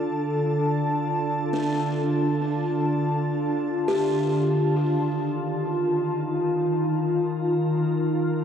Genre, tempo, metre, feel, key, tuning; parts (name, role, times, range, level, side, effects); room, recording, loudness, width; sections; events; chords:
ambient; free time; A4 = 440 Hz
glassy FM pad; sustained chords; 0.0-8.4 s; D3 to A5; -22 LUFS; equal; ensemble chorus, built-in reverb
buzzing kalimba; arpeggios; 0.0-7.9 s; D4 to A5; -31 LUFS; left 1 dB; tape echo
wet cathedral reverb, RT60 6.4 s; in a vast, echoing space; -22 LUFS; side -8 dB against mid
0.0-4.8 A section; 4.8-8.4 B section
0.0 Dm; 4.8 Ebadd9